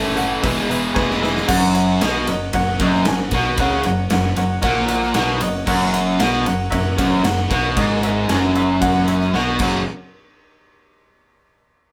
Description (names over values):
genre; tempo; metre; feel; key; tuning
classic rock; 115 BPM; 4/4; straight; F# mixolydian; A4 = 437 Hz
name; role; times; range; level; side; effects
bright upright piano; accompaniment; 0.0-9.8 s; F#4 to G#5; -26 LUFS; equal; none
crunchy overdriven guitar; riff; 0.0-9.8 s; E2 to A3; -27 LUFS; equal; none
distorted electric guitar; riff; 0.0-9.8 s; F#2 to E4; -23 LUFS; equal; distortion
distorted electric guitar; riff; 0.0-9.8 s; E2 to F#4; -27 LUFS; equal; distortion
growling picked electric bass; bass; 0.0-9.8 s; E1 to C#2; -29 LUFS; equal; overdrive
gated 80s drum kit; drums; 0.2-9.7 s; crash cymbal, hi-hat, kick drum, ride cymbal, snare drum; -26 LUFS; equal; none
room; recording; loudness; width
wet small room reverb, RT60 0.6 s; band playing live in one room; -18 LUFS; mono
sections
0.0-1.5 A section; 1.5-9.9 B section; 9.9-11.9 C section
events
drum fill 1.0-1.5, 9.3-9.9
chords
0.4 E; 1.5 F#; 9.9 N.C.